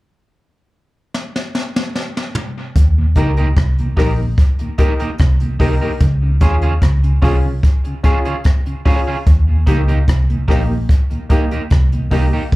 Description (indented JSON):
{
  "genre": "roots reggae",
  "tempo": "74 BPM",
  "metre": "4/4",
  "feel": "straight",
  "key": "Eb mixolydian",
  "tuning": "A4 = 440 Hz",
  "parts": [
    { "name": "jazz brush drum kit", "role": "drums", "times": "1.1-12.6 s", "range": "hi-hat, kick drum, rim click, snare drum, toms", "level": "-15 LUFS", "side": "equal", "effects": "none" },
    { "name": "vintage muted fingered electric bass", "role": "bass", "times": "2.8-12.6 s", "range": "Bb1 to Eb2", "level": "-15 LUFS", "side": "equal", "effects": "none" },
    { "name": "mellow tonewheel organ", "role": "accompaniment", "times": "3.0-12.4 s", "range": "Eb2 to F4", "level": "-26 LUFS", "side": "left 1 dB", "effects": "chorus vibrato, slow rotary speaker, slapback echo" },
    { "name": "electric guitar at the edge of break-up", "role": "accompaniment", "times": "3.2-12.4 s", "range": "Bb3 to Bb4", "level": "-25 LUFS", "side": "right 4 dB", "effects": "warbly pitch drift, tape echo, slapback echo" },
    { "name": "warm baby grand piano", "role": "stabs", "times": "3.2-12.3 s", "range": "Bb3 to Bb4", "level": "-23 LUFS", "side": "left 3 dB", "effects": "slapback echo" }
  ],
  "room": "little or no reverb",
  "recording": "live gig heard through the venue's PA, club reverb",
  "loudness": "-13 LUFS",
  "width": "side -20 dB against mid",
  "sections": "0.0-2.8 A section; 2.8-12.6 B section",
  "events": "drum fill 1.1-2.8",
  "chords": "0.0 N.C.; 2.8 Eb; 6.0 Db; 9.3 Eb",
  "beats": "0.32 1.13 1.94 | 2.75 3.57 4.38 5.19 | 6.01 6.82 7.63 8.45 | 9.26 10.07 10.89 11.70 | 12.52"
}